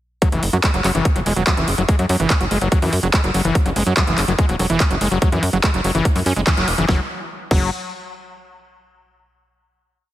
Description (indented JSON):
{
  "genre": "psychedelic trance",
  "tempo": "144 BPM",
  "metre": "4/4",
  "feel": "straight",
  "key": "unclear",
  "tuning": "A4 = 440 Hz",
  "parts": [
    { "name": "screaming distorted acid line", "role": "riff", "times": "0.2-7.7 s", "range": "E3 to C#4", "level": "-22 LUFS", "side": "equal", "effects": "distortion, chorus, auto-pan, sidechain pumping, dub echo" },
    { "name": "big-room dance drum kit", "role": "drums", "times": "0.2-7.6 s", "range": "crash cymbal, handclaps, hi-hat, snare drum", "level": "-23 LUFS", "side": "equal", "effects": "overdrive, studio reverb" },
    { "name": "electronic kick drum", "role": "drums", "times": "0.2-7.6 s", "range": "none", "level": "-17 LUFS", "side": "equal", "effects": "overdrive, studio reverb" },
    { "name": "tight sequencer bass", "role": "bass", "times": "0.3-7.7 s", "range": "E1 to F#2", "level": "-21 LUFS", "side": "equal", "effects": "none" }
  ],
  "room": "light reverb, digital ambience",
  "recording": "heavily compressed radio sound",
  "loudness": "-15 LUFS",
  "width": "side -14 dB against mid",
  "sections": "0.2-6.9 groove; 6.9-8.6 final chord",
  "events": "band accent 6.5",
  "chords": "0.2 F#5; 6.9 N.C."
}